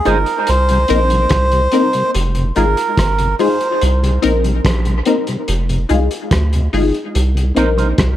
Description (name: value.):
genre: dub reggae.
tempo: 72 BPM.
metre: 4/4.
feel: straight.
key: C minor.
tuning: A4 = 438 Hz.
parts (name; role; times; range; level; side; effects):
melodica; melody; 0.0-3.8 s; Bb4 to C5; -17 LUFS; right 2 dB; dub echo.
electric guitar with an envelope filter; accompaniment; 0.1-0.2, 7.6-7.9 s; Eb4 to C5; -23 LUFS; right 5 dB; dub echo.
mellow tonewheel organ; accompaniment; 0.1-7.9 s; F2 to F4; -23 LUFS; left 2 dB; chorus vibrato, dub echo.
filtered dub chord stab; stabs; 0.1-7.8 s; C4 to Bb4; -20 LUFS; left 4 dB; phaser, dub echo.
soft dub sub bass; bass; 0.1-8.2 s; F1 to D2; -16 LUFS; equal; none.
cloth-damped thuddy drum kit; drums; 0.1-8.2 s; hi-hat, kick drum, rim click; -21 LUFS; equal; none.
room: light reverb, studio ambience.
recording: none.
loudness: -13 LUFS.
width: side -12 dB against mid.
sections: 0.0-8.2 A section.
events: none.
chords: 0.5 Cm7; 2.1 Fm7; 3.8 Cm7; 5.5 Fm7; 7.1 Cm7.